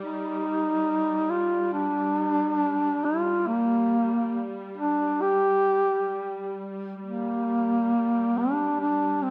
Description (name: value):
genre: caucasian folk, Caucasian lament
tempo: 64-72 BPM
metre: 4/4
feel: rubato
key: G minor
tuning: A4 = 440 Hz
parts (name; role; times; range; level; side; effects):
- mellow duduk; melody; 0.0-9.3 s; Bb3 to G4; -26 LUFS; equal; none
- rich studio string section; drone; 0.0-9.3 s; G3; -37 LUFS; equal; none
room: moderate scoring stage reverb, RT60 1.7 s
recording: none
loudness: -25 LUFS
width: mono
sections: 0.0-9.3 A section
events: none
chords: none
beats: | 0.03 0.88 1.73 2.59 | 3.46 4.31 5.18 6.10 | 7.02 7.91 8.78